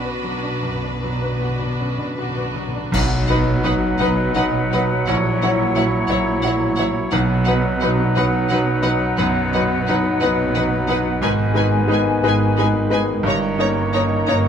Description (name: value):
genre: classical, romantic movement for piano and orchestra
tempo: 51-60 BPM (dotted quarters)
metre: 12/8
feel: rubato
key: B major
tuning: A4 = 440 Hz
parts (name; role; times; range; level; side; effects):
- clear baby grand piano; melody; 0.0-14.5 s; A#1 to C#5; -22 LUFS; left 1 dB; none
- rich chamber violin section; melody; 0.0-14.4 s; B4 to A#5; -29 LUFS; left 1 dB; none
- rich chamber violin section; second line; 0.0-14.3 s; F#4 to C#5; -30 LUFS; equal; none
- rich symphonic viola section; accompaniment; 0.0-14.3 s; B3 to E4; -31 LUFS; equal; none
- clear chamber double bass section; bass; 0.0-14.5 s; G1 to B1; -25 LUFS; right 3 dB; none
- warm chamber cello section; bass; 0.0-14.5 s; G2 to B2; -26 LUFS; right 3 dB; none
- timpani; percussion; 0.0-8.1 s; B2; -28 LUFS; left 1 dB; none
- clear clarinet; second line; 2.9-14.5 s; D#4 to E4; -30 LUFS; left 2 dB; none
- large flute ensemble; second line; 2.9-14.5 s; F#5 to A#5; -27 LUFS; left 2 dB; none
- warm oboe; second line; 2.9-14.5 s; B4 to C#5; -29 LUFS; equal; none
- mellow bassoon; accompaniment; 2.9-14.5 s; D#3 to F#3; -28 LUFS; right 1 dB; none
- mellow French horn section; sustained chords; 2.9-14.5 s; F#3 to E4; -28 LUFS; left 4 dB; none
- clash cymbals and concert bass drum; percussion; 2.9-4.3 s; none; -29 LUFS; equal; none
room: moderate recital hall reverb, RT60 1.5 s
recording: close, detailed microphones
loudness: -16 LUFS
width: side -8 dB against mid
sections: 0.0-2.9 A section; 2.9-14.5 B section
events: timpani fill 0.0-2.9; band accent 2.9-3.7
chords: 0.0 Bm; 2.9 B; 5.1 F#7/A#; 7.1 B; 11.2 G#m; 13.2 D#7/G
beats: 0.64 1.79 | 2.93 4.00 5.06 6.09 | 7.12 8.16 9.18 10.21 | 11.21 12.23 13.25 14.27